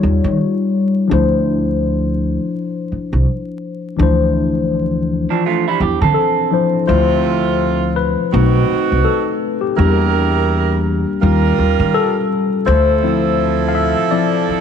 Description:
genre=R&B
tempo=83 BPM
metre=4/4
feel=swing 58% on 16ths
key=D minor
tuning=A4 = 440 Hz
part: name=tine electric piano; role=accompaniment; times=0.0-14.6 s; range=E3 to F5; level=-17 LUFS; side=left 6 dB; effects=phaser
part: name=upright bass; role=bass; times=0.0-14.5 s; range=B1 to Eb3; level=-17 LUFS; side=right 1 dB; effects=none
part: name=electric guitar through a small old amp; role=second line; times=5.3-6.9 s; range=F3 to A4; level=-18 LUFS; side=right 11 dB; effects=none
part: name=bright saxophone section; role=stabs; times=6.9-14.6 s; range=C3 to Bb4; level=-19 LUFS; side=right 11 dB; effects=none
room=moderate echo chamber reverb, RT60 2.5 s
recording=1960s-style stereo with parts hard left and right, vinyl crackle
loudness=-13 LUFS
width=side -8 dB against mid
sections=0.0-6.9 A section; 6.9-14.6 A section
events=tine electric piano solo 6.9-14.6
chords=0.0 Eb9; 1.1 Dm9; 8.3 B7b9; 9.8 Em7b5; 11.2 Eb9; 12.7 Dm9

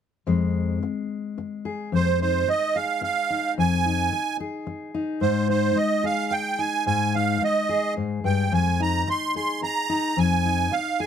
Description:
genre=folk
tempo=109 BPM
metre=3/4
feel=straight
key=F minor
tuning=A4 = 441 Hz
part: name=fingerpicked steel-string acoustic guitar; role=accompaniment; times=0.3-11.1 s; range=F2 to Ab4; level=-24 LUFS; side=left 4 dB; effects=none
part: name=musette accordion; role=melody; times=1.9-11.1 s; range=C5 to C6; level=-23 LUFS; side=right 6 dB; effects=none
room=light reverb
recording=none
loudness=-22 LUFS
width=side -8 dB against mid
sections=0.3-1.9 A section; 1.9-11.1 B section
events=none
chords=0.3 Fm; 1.9 Fm7; 5.2 Ab5; 8.5 Fm7

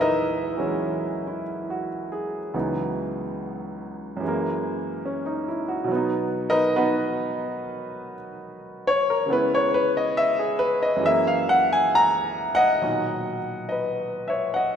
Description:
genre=solo jazz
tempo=70 BPM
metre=4/4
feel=swing 69% on 8ths, rubato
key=B major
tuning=A4 = 440 Hz
part: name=warm concert grand piano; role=solo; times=0.0-14.8 s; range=C#2 to A#5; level=-22 LUFS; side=equal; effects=none
room=wet lush hall reverb, RT60 2.6 s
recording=rough home demo mix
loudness=-22 LUFS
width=side -8 dB against mid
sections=0.0-12.8 A section; 12.8-14.8 B section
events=grand piano solo 0.0-12.8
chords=0.0 Emaj9#11; 2.5 C#m11; 4.2 F#9; 5.9 Bmaj7; 9.3 C#m7; 11.0 F#9; 12.8 Bmaj7

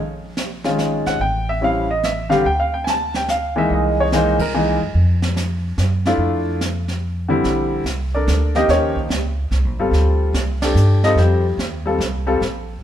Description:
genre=jazz piano trio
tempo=144 BPM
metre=3/4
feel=swing 66% on 8ths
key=F major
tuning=A4 = 440 Hz
part: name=upright bass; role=bass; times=0.0-12.8 s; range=G1 to G2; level=-20 LUFS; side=equal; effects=none
part: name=jazz brush drum kit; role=drums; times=0.4-12.8 s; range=brushed snare drum, hi-hat, kick drum, ride cymbal, snare drum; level=-27 LUFS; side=right 2 dB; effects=none
part: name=clear upright piano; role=melody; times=0.6-12.4 s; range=D3 to A5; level=-18 LUFS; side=left 1 dB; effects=none
room=moderate stone room reverb, RT60 1.4 s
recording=band playing live in one room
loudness=-16 LUFS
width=side -10 dB against mid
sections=0.0-7.4 A section; 7.4-12.8 B section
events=band accent 4.3, 10.6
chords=0.0 Bbm7; 1.2 A7(no3); 2.5 Dsus2; 3.7 C7alt; 5.0 Fmaj7; 7.4 Bbmaj9; 8.7 Eb9; 9.9 Dm7; 11.2 F9

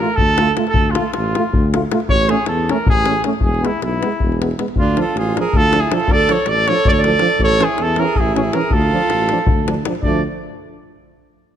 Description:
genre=balkan folk, Balkan brass band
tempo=317 BPM (eighths)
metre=7/8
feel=straight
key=D hungarian minor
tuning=A4 = 440 Hz
part: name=mellow trumpet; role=melody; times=0.0-10.2 s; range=E4 to D5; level=-18 LUFS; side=right 1 dB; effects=none
part: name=mellow euphonium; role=accompaniment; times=0.0-10.2 s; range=E3 to A3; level=-25 LUFS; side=right 7 dB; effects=none
part: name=warm trombone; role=accompaniment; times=0.0-10.2 s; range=B3 to F4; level=-26 LUFS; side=left 7 dB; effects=none
part: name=mellow tuba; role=bass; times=0.0-10.2 s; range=E1 to E2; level=-21 LUFS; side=equal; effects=none
part: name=davul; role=percussion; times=0.2-10.2 s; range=none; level=-20 LUFS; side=left 2 dB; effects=none
part: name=warm alto saxophone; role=second line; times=4.8-10.2 s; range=A3 to A4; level=-22 LUFS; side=right 5 dB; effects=none
room=light reverb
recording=none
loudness=-14 LUFS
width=side -9 dB against mid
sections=0.0-10.0 A section; 10.0-11.3 B section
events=none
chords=0.0 Dm; 2.1 A; 3.4 E; 4.8 Dm; 7.4 A; 8.7 Dm

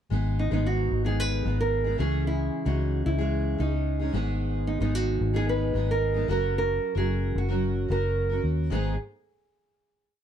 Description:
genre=acoustic pop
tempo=112 BPM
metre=4/4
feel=straight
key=G# minor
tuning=A4 = 440 Hz
part: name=fingerpicked steel-string acoustic guitar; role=accompaniment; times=0.1-8.9 s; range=G#2 to A#4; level=-30 LUFS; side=equal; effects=double-tracked left and right
part: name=vintage muted fingered electric bass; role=bass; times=0.1-9.0 s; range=F#1 to D#2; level=-27 LUFS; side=left 1 dB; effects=none
part: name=nylon-string guitar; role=melody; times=0.4-9.0 s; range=D#4 to B4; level=-29 LUFS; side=right 3 dB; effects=none
room=moderate studio reverb, RT60 0.5 s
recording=dark, warm production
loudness=-24 LUFS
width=side -9 dB against mid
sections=0.1-8.7 verse; 8.7-10.2 final chord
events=none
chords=0.1 G#m; 2.0 C#madd9; 4.1 G#m; 6.3 F#; 8.7 G#m

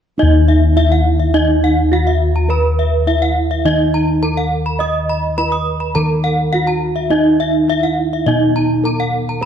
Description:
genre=Balinese gamelan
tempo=104 BPM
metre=4/4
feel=straight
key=Eb pelog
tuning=A4 = 440 Hz
part: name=gamelan-type bronze metallophone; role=melody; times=0.2-9.5 s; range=Eb4 to Eb5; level=-18 LUFS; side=right 4 dB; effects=none
part: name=gamelan-type bronze metallophone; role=arpeggios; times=0.2-9.5 s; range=Eb5 to Eb6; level=-19 LUFS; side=left 1 dB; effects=none
part: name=gamelan-type bossed gongs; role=bass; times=0.2-9.5 s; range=Eb2 to Eb5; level=-16 LUFS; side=left 1 dB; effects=none
room=light reverb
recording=dark, warm production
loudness=-13 LUFS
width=side -8 dB against mid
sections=0.2-9.5 A section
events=none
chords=none

